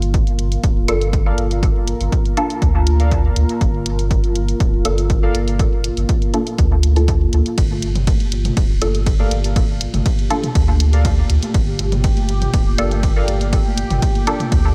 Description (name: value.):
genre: dub techno.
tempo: 121 BPM.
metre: 4/4.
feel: straight.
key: G minor.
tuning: A4 = 440 Hz.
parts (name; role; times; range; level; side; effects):
deep dark ambient pad; sustained chords; 0.0-14.7 s; Bb3 to Bb4; -28 LUFS; equal; chorus, built-in reverb, sidechain pumping.
warm sub bass; bass; 0.0-14.7 s; D1 to D2; -21 LUFS; equal; tube saturation, sidechain pumping.
punchy analog drum machine; drums; 0.0-14.6 s; hi-hat, ride cymbal; -31 LUFS; equal; none.
electronic kick drum; drums; 0.1-14.6 s; none; -20 LUFS; equal; none.
filtered dub chord stab; stabs; 0.9-14.4 s; Bb3 to A4; -27 LUFS; equal; phaser, sidechain pumping, dub echo.
warbly lo-fi synth keys; riff; 1.3-5.4, 9.2-13.3 s; A4 to F5; -33 LUFS; equal; chorus, phaser, sidechain pumping, dub echo.
bubbling stepped-filter texture; texture; 8.0-14.7 s; G4; -34 LUFS; equal; chorus, built-in reverb, sidechain pumping.
electronic congas and toms; percussion; 7.7-14.5 s; none; -29 LUFS; equal; overdrive, sidechain pumping on perc, sidechain pumping on toms, dub echo.
room: light reverb, digital ambience.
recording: none.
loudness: -17 LUFS.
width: mono.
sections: 0.0-14.7 A section.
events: none.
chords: 0.0 Gm7.